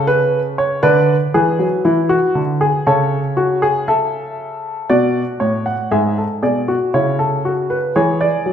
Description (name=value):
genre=classical, baroque-style 3-part fugue for grand piano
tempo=59 BPM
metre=4/4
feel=straight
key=unclear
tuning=A4 = 440 Hz
part: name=warm baby grand piano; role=solo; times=0.0-8.5 s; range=G#2 to F#5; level=-14 LUFS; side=equal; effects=none
room=wet recital hall reverb, RT60 1.8 s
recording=minimal, uncompressed stereo recording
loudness=-14 LUFS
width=side -8 dB against mid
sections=0.0-4.9 A section; 4.9-8.5 B section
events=none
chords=0.0 N.C.; 0.8 E7/D; 2.9 A/C#; 4.9 G#m7b5; 6.9 C#m